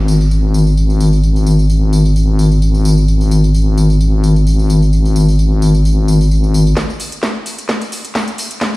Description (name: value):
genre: bass house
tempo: 130 BPM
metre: 4/4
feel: swing 54% on 16ths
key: unclear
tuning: A4 = 440 Hz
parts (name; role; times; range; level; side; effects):
- wobble bass; bass; 0.0-6.7 s; G#1; -9 LUFS; equal; chorus, tube saturation, sidechain pumping
- garage drum kit; drums; 0.1-8.8 s; hi-hat, snare drum, tambourine; -23 LUFS; equal; none
- electronic kick drum; drums; 6.8-8.7 s; none; -20 LUFS; equal; high-pass filter on kick
room: little or no reverb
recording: played on a big sound system in a bare room, stone room reverb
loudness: -10 LUFS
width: side -20 dB against mid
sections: 0.0-6.8 A section; 6.8-8.8 B section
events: build-up 6.8-8.8; drum fill 6.8-8.8; filter sweep 6.8-8.8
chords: none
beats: 0.31 0.77 | 1.23 1.69 2.15 2.61 | 3.08 3.54 4.00 4.46 | 4.92 5.38 5.84 6.31 | 6.77 7.23 7.69 8.15 | 8.61